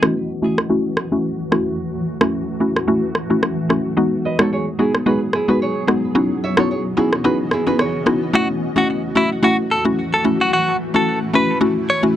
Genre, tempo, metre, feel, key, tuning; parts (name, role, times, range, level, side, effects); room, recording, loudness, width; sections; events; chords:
afrobeats; 110 BPM; 4/4; swing 55% on 16ths; F# dorian; A4 = 441 Hz
mallet-like synth pluck; accompaniment; 0.0-12.2 s; G#3 to F#4; -18 LUFS; left 1 dB; chorus, low-pass filter
granular cloud pad; sustained chords; 0.0-12.2 s; E3 to D#5; -25 LUFS; left 1 dB; built-in reverb, low-pass filter
electronic rim click; drums; 0.0-8.2 s; -17 LUFS; right 1 dB; overdrive
nylon-string guitar; riff; 4.3-8.0 s; E4 to E5; -23 LUFS; right 4 dB; low-pass filter, digital delay
direct-recorded clean electric guitar; melody; 8.4-12.0 s; E4 to C#5; -18 LUFS; equal; digital delay
little or no reverb; dark, warm production; -16 LUFS; side -11 dB against mid
0.0-8.3 A section; 8.3-12.2 B section
filter sweep 0.0-8.3
0.0 F#m7; 4.0 G#m7; 6.2 C#m11; 8.3 F#m7